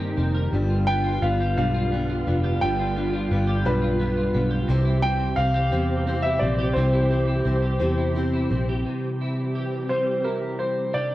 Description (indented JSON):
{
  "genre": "pop",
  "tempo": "58 BPM (dotted quarters)",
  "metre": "6/8",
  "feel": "straight",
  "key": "unclear",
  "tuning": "A4 = 440 Hz",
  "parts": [
    { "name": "dark baby grand piano", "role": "melody", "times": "0.0-11.1 s", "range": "Bb4 to G5", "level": "-26 LUFS", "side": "equal", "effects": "tape echo" },
    { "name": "twelve-string electric guitar", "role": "accompaniment", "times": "0.0-11.1 s", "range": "G2 to Bb4", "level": "-28 LUFS", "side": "equal", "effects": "double-tracked left and right" },
    { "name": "dark studio string section", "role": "sustained chords", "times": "0.0-11.1 s", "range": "C3 to G4", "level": "-29 LUFS", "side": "right 1 dB", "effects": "none" },
    { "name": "fingerpicked steel-string acoustic guitar", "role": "arpeggios", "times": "0.0-8.9 s", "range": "G2 to C5", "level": "-30 LUFS", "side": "left 2 dB", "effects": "none" },
    { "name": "vintage muted fingered electric bass", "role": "bass", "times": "0.0-8.8 s", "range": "F1 to G2", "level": "-24 LUFS", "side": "equal", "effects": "none" }
  ],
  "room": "light reverb, small room ambience",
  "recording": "worn, warbling old tape, cassette tape, warbly pitch drift",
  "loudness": "-21 LUFS",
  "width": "side -15 dB against mid",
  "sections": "0.0-8.9 A section; 8.9-10.9 B section",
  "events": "none",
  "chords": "0.0 Cm7; 0.5 G7; 4.7 C"
}